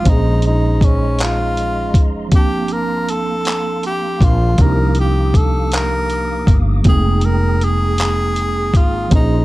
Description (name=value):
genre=slow six-eight R&B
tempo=53 BPM (dotted quarters)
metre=6/8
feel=straight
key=F minor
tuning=A4 = 439 Hz
part: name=breathy tenor saxophone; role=melody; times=0.0-9.4 s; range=Db4 to Bb4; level=-20 LUFS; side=left 1 dB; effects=none
part: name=mellow tine electric piano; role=accompaniment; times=0.0-9.4 s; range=F3 to A5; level=-22 LUFS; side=right 4 dB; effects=fast stereo tremolo
part: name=mellow tonewheel organ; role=sustained chords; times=0.0-9.4 s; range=Ab3 to Eb6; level=-30 LUFS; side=equal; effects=chorus vibrato, fast rotary speaker
part: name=woody fretless electric bass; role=bass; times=0.0-9.4 s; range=F1 to C2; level=-17 LUFS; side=equal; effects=wide subtle chorus
part: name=dusty soul sampler-style drum kit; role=drums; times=0.1-9.3 s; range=handclaps, hi-hat, kick drum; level=-14 LUFS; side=equal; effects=none
room=little or no reverb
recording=dark, warm production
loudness=-13 LUFS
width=side -18 dB against mid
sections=0.0-9.4 A section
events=none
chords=0.1 Bbm11; 2.3 Gm11; 4.6 Cm11; 6.9 Fm11